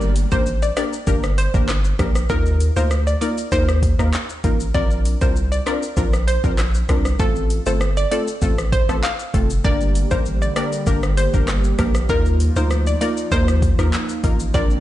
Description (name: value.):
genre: dancehall.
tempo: 98 BPM.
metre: 4/4.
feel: straight.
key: unclear.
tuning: A4 = 440 Hz.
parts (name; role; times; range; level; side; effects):
punchy chord stab; accompaniment; 0.0-14.8 s; A3 to Bb4; -25 LUFS; left 1 dB; chorus, sidechain pumping.
punchy sub bass; bass; 0.0-14.8 s; F1 to Eb2; -19 LUFS; equal; none.
afro-pop drum kit; drums; 0.0-14.8 s; handclaps, hi-hat, kick drum, rim click, shaker; -21 LUFS; equal; overdrive.
analog pluck; melody; 0.3-14.7 s; A4 to F5; -26 LUFS; equal; chorus, ping-pong delay.
hollow soft pad; sustained chords; 9.6-14.8 s; C3 to G4; -28 LUFS; equal; chorus, sidechain pumping.
room: little or no reverb.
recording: played on a big sound system in a bare room, stone room reverb, nothing above 10.8 kHz.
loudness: -16 LUFS.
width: side -14 dB against mid.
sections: 0.0-14.8 A section.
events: none.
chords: 0.0 Gm; 2.3 Ebsus2; 4.7 Bbadd9; 7.2 F; 9.6 Gm; 12.1 Ebsus2.